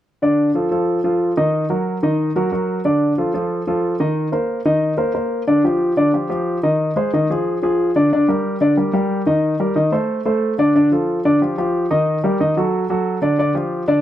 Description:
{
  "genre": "jazz",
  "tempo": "182 BPM",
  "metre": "4/4",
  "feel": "straight",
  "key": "unclear",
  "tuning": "A4 = 439 Hz",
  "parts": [
    { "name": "warm grand piano", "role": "solo", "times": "0.2-14.0 s", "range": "D3 to Eb5", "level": "-16 LUFS", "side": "equal", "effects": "none" }
  ],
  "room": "wet club reverb, RT60 0.8 s",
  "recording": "dark, warm production",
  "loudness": "-16 LUFS",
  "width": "side -12 dB against mid",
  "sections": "0.2-5.5 A section; 5.5-14.0 B section",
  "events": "none",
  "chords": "0.2 Dm; 1.5 Ebm; 2.8 Dm; 4.2 Cm7/Eb; 5.5 Dmadd11; 6.8 Fm7; 7.5 Ddim; 8.1 Ebmaj7; 9.4 Cm7; 10.1 Amadd11; 10.8 Dm; 11.4 Ebadd9; 12.1 Ebm; 12.7 D; 13.4 Dmadd11",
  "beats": "| 0.21 0.54 0.87 1.20 | 1.53 1.86 2.19 2.52 | 2.85 3.17 3.50 3.83 | 4.16 4.49 4.82 5.15 | 5.48 5.81 6.14 6.47 | 6.79 7.12 7.45 7.78 | 8.11 8.44 8.77 9.10 | 9.43 9.76 10.09 10.42 | 10.75 11.08 11.41 11.74 | 12.07 12.40 12.73 13.06 | 13.39 13.71"
}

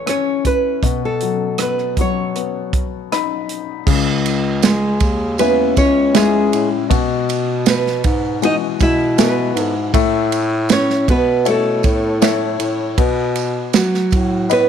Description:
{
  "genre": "pop ballad",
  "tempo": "79 BPM",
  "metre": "4/4",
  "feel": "straight",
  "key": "C# minor",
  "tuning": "A4 = 440 Hz",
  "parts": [
    { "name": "nylon-string guitar", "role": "melody", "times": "0.0-14.7 s", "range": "F#3 to E5", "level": "-18 LUFS", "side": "right 2 dB", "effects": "none" },
    { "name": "clear baby grand piano", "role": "accompaniment", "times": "0.0-14.7 s", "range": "A2 to B5", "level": "-20 LUFS", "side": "left 14 dB", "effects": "none" },
    { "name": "natural country drum kit", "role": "drums", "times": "0.1-14.7 s", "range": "crash cymbal, hi-hat, kick drum, ride cymbal, rim click, snare drum", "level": "-18 LUFS", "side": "right 3 dB", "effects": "none" },
    { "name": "warm bass clarinet", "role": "bass", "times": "3.9-14.7 s", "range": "C#2 to B2", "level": "-21 LUFS", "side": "equal", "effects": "none" },
    { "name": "tambourine", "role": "percussion", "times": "3.9-14.7 s", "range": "none", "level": "-32 LUFS", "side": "right 17 dB", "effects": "none" }
  ],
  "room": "studio ambience",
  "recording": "1960s-style stereo with parts hard left and right",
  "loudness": "-14 LUFS",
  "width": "side -8 dB against mid",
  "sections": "0.0-3.9 A section; 3.9-14.7 B section",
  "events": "grand piano fill 2.7-3.9",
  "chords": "0.0 A; 0.8 Badd9; 3.9 C#m; 6.9 Eadd9; 9.9 A; 13.0 B5",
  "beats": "0.07 | 0.83 1.59 2.35 3.11 | 3.87 4.62 5.38 6.14 | 6.90 7.66 8.42 9.18 | 9.94 10.70 11.46 12.22 | 12.98 13.74 14.50"
}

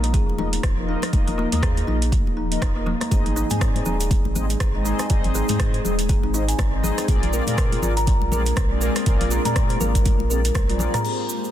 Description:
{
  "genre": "afro house",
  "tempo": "121 BPM",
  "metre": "4/4",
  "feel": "swing 58% on 16ths",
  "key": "unclear",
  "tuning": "A4 = 440 Hz",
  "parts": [
    { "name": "ethereal airy pad", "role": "sustained chords", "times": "0.1-11.5 s", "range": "F3 to G5", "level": "-30 LUFS", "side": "equal", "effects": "ensemble chorus, built-in reverb, vintage 12-bit sampler grit, sidechain pumping" },
    { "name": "kalimba", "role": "arpeggios", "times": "0.0-11.0 s", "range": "Bb3 to Bb5", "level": "-28 LUFS", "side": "equal", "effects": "sidechain pumping, tape echo" },
    { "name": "warm sub bass", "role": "bass", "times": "0.0-10.9 s", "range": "Eb1 to Bb2", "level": "-25 LUFS", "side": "equal", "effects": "sidechain pumping" },
    { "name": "afro-pop drum kit", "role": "drums", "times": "0.0-11.2 s", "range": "crash cymbal, hi-hat, rim click, toms", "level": "-30 LUFS", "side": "right 1 dB", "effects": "soft clipping on snare" },
    { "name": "electronic kick drum", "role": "drums", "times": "0.1-10.7 s", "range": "none", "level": "-21 LUFS", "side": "equal", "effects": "none" },
    { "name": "congas", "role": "percussion", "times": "0.1-11.0 s", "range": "none", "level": "-31 LUFS", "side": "left 5 dB", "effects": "none" },
    { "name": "mellow synth brass", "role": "stabs", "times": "0.4-11.5 s", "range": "Bb3 to Eb5", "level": "-29 LUFS", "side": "left 2 dB", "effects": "chorus, sidechain pumping, tape echo" },
    { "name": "cabasa", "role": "percussion", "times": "3.1-11.5 s", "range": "none", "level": "-34 LUFS", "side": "right 3 dB", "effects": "none" }
  ],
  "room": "little or no reverb",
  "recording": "dense, heavily limited modern master",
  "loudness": "-19 LUFS",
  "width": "side -11 dB against mid",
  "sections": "0.0-11.0 A section",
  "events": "drum fill 10.6-11.0",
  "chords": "0.0 Ebsus2; 3.1 Ab; 7.1 Bb7",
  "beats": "0.14 0.64 | 1.13 1.63 2.12 2.62 | 3.12 3.61 4.11 4.60 | 5.10 5.59 6.09 6.59 | 7.08 7.58 8.07 8.57 | 9.06 9.56 10.06 10.55 | 11.05"
}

